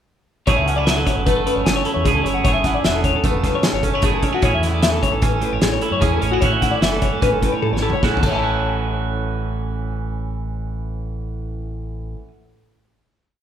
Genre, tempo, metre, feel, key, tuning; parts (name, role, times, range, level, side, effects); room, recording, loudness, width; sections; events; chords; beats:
math rock and midwest emo; 151 BPM; 5/4; straight; A major; A4 = 440 Hz
twangy electric guitar; accompaniment; 0.5-12.4 s; F#2 to G#4; -23 LUFS; right 6 dB; spring reverb
twelve-string electric guitar; arpeggios; 0.5-12.3 s; F#4 to A5; -22 LUFS; left 5 dB; warbly pitch drift, slapback echo
growling fingered electric bass; bass; 0.5-12.1 s; E1 to F#2; -24 LUFS; equal; overdrive
loose indie drum kit; drums; 0.5-8.3 s; crash cymbal, hi-hat, kick drum, snare drum, toms; -20 LUFS; equal
moderate large studio reverb, RT60 1.2 s; band playing live in one room; -17 LUFS; side -9 dB against mid
0.5-8.4 A section; 8.4-12.4 final hit
drum fill 7.6-8.4
0.5 F#m9; 4.4 Amaj7; 6.4 A6
| 0.48 0.87 1.27 1.66 2.06 | 2.45 2.85 3.24 3.64 4.04 | 4.43 4.83 5.23 5.62 6.02 | 6.42 6.82 7.22 7.62 8.02 | 8.42 8.82 9.22 9.62 10.02 | 10.42 10.82 11.21 11.61 12.01